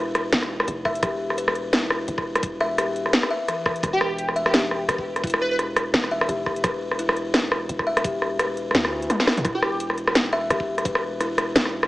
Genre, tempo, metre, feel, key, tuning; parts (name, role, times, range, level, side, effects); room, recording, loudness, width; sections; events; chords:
half-time drum and bass; 171 BPM; 4/4; swing 56% on 16ths, half-time; E phrygian; A4 = 444 Hz
buzzing kalimba; arpeggios; 0.0-11.9 s; E3 to E5; -27 LUFS; left 1 dB; digital delay
long sustained 808-style bass; bass; 0.0-11.9 s; E1 to D2; -34 LUFS; equal
drum and bass drum kit; drums; 0.1-11.9 s; hi-hat, rim click, snare drum, toms; -22 LUFS; equal
electronic kick drum; drums; 0.9-10.9 s; -31 LUFS; equal
plucky unison lead; melody; 3.9-5.6, 9.5-9.9 s; G4 to B4; -28 LUFS; right 1 dB; analog chorus, digital delay
moderate echo chamber reverb, RT60 1.3 s; small speaker sound; -20 LUFS; side -18 dB against mid
0.0-11.9 A section
drum fill 9.1-9.4
0.0 E5